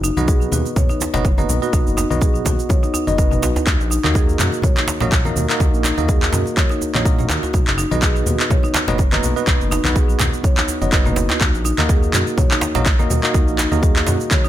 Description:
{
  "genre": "afro house",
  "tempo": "124 BPM",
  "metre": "4/4",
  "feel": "swing 55% on 16ths",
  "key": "Eb minor",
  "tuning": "A4 = 437 Hz",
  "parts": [
    { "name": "marimba with medium mallets", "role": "arpeggios", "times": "0.0-14.5 s", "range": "Bb3 to D#5", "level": "-25 LUFS", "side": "left 1 dB", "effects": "sidechain pumping, ping-pong delay" },
    { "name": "smooth synth bass", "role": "bass", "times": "0.0-14.2 s", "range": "F#1 to Gb2", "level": "-22 LUFS", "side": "equal", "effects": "sidechain pumping" },
    { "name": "electronic cabasa and handclaps", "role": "drums", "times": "0.0-14.5 s", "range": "none", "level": "-22 LUFS", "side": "equal", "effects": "none" },
    { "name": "congas", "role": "percussion", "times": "0.0-14.5 s", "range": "none", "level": "-26 LUFS", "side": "left 3 dB", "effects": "none" },
    { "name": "bell-like tine electric piano", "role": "stabs", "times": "0.2-14.5 s", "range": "Bb3 to D#5", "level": "-24 LUFS", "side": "right 2 dB", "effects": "fast stereo tremolo, sidechain pumping, ping-pong delay" },
    { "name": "electronic kick drum", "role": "drums", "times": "0.3-14.4 s", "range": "none", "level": "-17 LUFS", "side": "equal", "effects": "none" },
    { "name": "djembe", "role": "percussion", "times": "1.0-14.2 s", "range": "none", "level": "-26 LUFS", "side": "right 2 dB", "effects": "none" }
  ],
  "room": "little or no reverb",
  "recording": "none",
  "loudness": "-15 LUFS",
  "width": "side -12 dB against mid",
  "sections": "0.0-14.5 A section",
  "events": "none",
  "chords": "0.0 B; 3.7 Ebm; 7.5 B; 11.4 Ebm",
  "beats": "0.28 0.76 1.25 | 1.73 2.22 2.70 3.18 | 3.67 4.15 4.63 5.12 | 5.60 6.09 6.57 7.05 | 7.54 8.02 8.51 8.99 | 9.47 9.96 10.44 10.93 | 11.41 11.89 12.38 12.86 | 13.35 13.83 14.31"
}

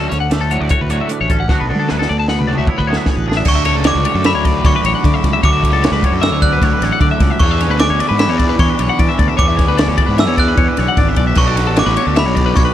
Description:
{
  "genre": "math rock and midwest emo",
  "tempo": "152 BPM",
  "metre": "5/4",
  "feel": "straight",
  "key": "D lydian",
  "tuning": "A4 = 440 Hz",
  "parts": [
    { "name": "twangy electric guitar", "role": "accompaniment", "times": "0.0-5.4 s", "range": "D2 to F#4", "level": "-24 LUFS", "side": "right 7 dB", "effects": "lush chorus" },
    { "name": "twelve-string electric guitar", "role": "arpeggios", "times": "0.0-12.7 s", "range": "F#4 to A5", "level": "-20 LUFS", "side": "left 8 dB", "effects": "wide subtle chorus, analog delay" },
    { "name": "raw garage guitar", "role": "riff", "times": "0.0-12.7 s", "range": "B2 to G#4", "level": "-21 LUFS", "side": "right 2 dB", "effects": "overdrive" },
    { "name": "fuzz fingered electric bass", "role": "bass", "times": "0.0-12.7 s", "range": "G#1 to E3", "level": "-18 LUFS", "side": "equal", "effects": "overdrive" },
    { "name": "compact cocktail drum kit", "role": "drums", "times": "0.1-12.7 s", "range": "crash cymbal, hi-hat, kick drum, ride cymbal, snare drum, toms", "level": "-16 LUFS", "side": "equal", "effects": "none" },
    { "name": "glockenspiel with hard plastic mallets", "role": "melody", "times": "3.5-12.7 s", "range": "B5 to F#6", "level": "-19 LUFS", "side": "right 2 dB", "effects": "none" }
  ],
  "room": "little or no reverb",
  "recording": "dark, warm production, lossy compression artefacts",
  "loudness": "-12 LUFS",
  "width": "side -11 dB against mid",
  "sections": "0.0-3.5 A section; 3.5-12.7 B section",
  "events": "drum fill 1.5-3.5",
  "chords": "0.0 Dmaj7; 1.5 D6; 3.5 Dmaj9; 7.4 E13; 11.4 Bm7",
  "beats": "0.31 0.71 1.10 | 1.50 1.89 2.29 2.68 3.08 | 3.47 3.86 4.26 4.65 5.04 | 5.44 5.83 6.22 6.62 7.01 | 7.41 7.81 8.20 8.60 8.99 | 9.39 9.79 10.19 10.58 10.98 | 11.38 11.77 12.17 12.57"
}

